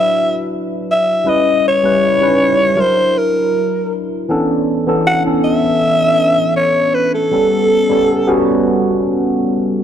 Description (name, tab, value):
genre	soul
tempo	79 BPM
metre	4/4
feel	swing 54% on 16ths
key	unclear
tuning	A4 = 440 Hz
part	growling alto saxophone	melody	0.0-8.6 s	A4 to F#5	-14 LUFS	equal	none
part	tine electric piano	accompaniment	0.0-9.8 s	E3 to B4	-15 LUFS	equal	phaser
room	light reverb, studio ambience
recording	dark, warm production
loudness	-12 LUFS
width	side -9 dB against mid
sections	0.0-9.8 A section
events	none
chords	0.0 D69; 1.3 C#m7b5; 2.8 F#aug7; 4.3 Bm11; 7.3 A9